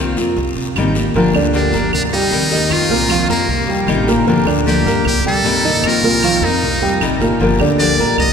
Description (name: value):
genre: latin, Cuban son and guajira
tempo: 154 BPM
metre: 4/4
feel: straight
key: G minor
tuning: A4 = 440 Hz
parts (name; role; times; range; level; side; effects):
- picked steel-string acoustic guitar; accompaniment; 0.0-8.2 s; C3 to G4; -18 LUFS; left 3 dB; none
- upright bass; bass; 0.0-8.3 s; G1 to C3; -20 LUFS; right 1 dB; none
- guiro; percussion; 0.2-8.3 s; none; -30 LUFS; left 4 dB; none
- claves; percussion; 0.8-8.3 s; none; -30 LUFS; right 4 dB; none
- dark concert grand piano; arpeggios; 1.2-8.3 s; Bb2 to Bb5; -18 LUFS; right 1 dB; none
- trumpet with metal mute; melody; 1.6-8.3 s; Bb3 to Eb5; -18 LUFS; equal; none
room: wet cathedral reverb, RT60 5.7 s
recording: recorded in a church or concert hall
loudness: -12 LUFS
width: side -6 dB against mid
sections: 0.0-1.1 A section; 1.1-8.3 B section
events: none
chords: 0.4 Cm7; 1.1 Gm7; 1.9 Cm7; 2.7 F7sus4; 3.5 Cm7; 4.3 Gm7; 5.1 Cm7; 5.8 F7sus4; 6.6 Cm7; 7.4 Gm7